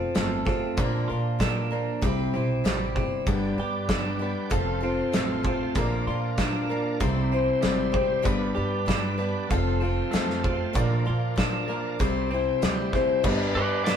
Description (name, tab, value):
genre	folk rock and heartland rock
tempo	96 BPM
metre	4/4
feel	straight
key	unclear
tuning	A4 = 441 Hz
part	picked steel-string acoustic guitar	accompaniment	0.0-14.0 s	G2 to C5	-28 LUFS	left 4 dB	none
part	twelve-string electric guitar	riff	0.0-14.0 s	F2 to G4	-30 LUFS	right 4 dB	spring reverb
part	loose indie drum kit	drums	0.1-14.0 s	crash cymbal, hi-hat, kick drum, snare drum	-28 LUFS	equal	none
part	upright bass	bass	0.2-14.0 s	F1 to Bb2	-30 LUFS	right 1 dB	none
part	bright tonewheel organ	sustained chords	3.3-14.0 s	G4 to C6	-38 LUFS	right 2 dB	slow rotary speaker, chorus vibrato
part	dark upright piano	accompaniment	13.2-14.0 s	D4 to B4	-35 LUFS	right 6 dB	none
part	lightly driven lead guitar	melody	13.6-14.0 s	B4 to D5	-26 LUFS	right 2 dB	none
room	moderate stone room reverb, RT60 1.2 s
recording	band playing live in one room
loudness	-23 LUFS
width	side -8 dB against mid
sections	0.0-13.2 A section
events	none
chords	0.0 F; 0.8 Bb; 2.0 C; 3.3 G; 4.5 F; 5.8 Bb; 7.0 C; 8.3 G; 9.5 F; 10.8 Bb; 12.0 C; 13.2 G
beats	0.15 | 0.77 1.40 2.02 2.64 | 3.27 3.89 4.51 5.14 | 5.76 6.38 7.01 7.63 | 8.26 8.88 9.50 10.13 | 10.75 11.37 12.00 12.62 | 13.24 13.87